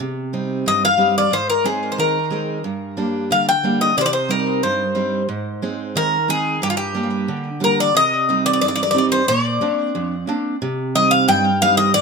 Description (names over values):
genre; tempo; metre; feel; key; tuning
greek folk, Greek bouzouki band; 90 BPM; 2/4; straight; unclear; A4 = 442 Hz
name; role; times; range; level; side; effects
picked steel-string acoustic guitar; accompaniment; 0.0-12.0 s; F2 to Eb4; -21 LUFS; right 4 dB; none
Greek bouzouki; melody; 0.7-12.0 s; F4 to G5; -17 LUFS; left 2 dB; tape echo
room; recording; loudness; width
moderate studio reverb, RT60 0.6 s; close, detailed microphones; -16 LUFS; side -4 dB against mid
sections
0.0-8.0 A section; 8.0-12.0 B section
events
none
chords
0.0 Cm; 1.3 Ab; 2.6 Gm; 4.0 Cm; 5.3 Ab; 6.6 Gm; 8.0 Cm; 9.3 Bbadd9; 10.6 Cm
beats
0.65 | 1.31 1.98 | 2.64 3.30 | 3.96 4.63 | 5.29 5.96 | 6.62 7.29 | 7.95 8.62 | 9.28 9.95 | 10.61 11.28 | 11.94